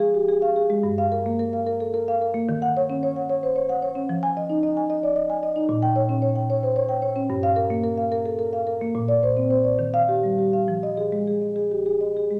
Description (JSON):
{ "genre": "classical, contemporary piece for solo marimba", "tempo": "67-76 BPM (dotted quarters)", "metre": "6/8", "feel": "rubato", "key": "F minor", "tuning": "A4 = 436 Hz", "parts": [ { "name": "marimba with soft mallets", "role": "solo", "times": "0.0-12.4 s", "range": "G2 to Ab5", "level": "-23 LUFS", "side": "equal", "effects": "none" } ], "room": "wet recital hall reverb, RT60 1.6 s", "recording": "none", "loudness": "-23 LUFS", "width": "mono", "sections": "0.0-12.4 A section", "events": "none", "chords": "0.0 Fmadd9; 0.8 Gm7; 2.5 Ebm7; 4.1 Fm7; 5.7 Bbm6; 7.3 Gm7; 9.0 Bbadd9; 9.8 Ebadd9; 10.7 Fm7", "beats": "0.01 | 0.84 1.66 | 2.48 3.30 | 4.10 4.90 | 5.69 6.50 | 7.31 8.13 | 8.96 9.80 | 10.68 11.56" }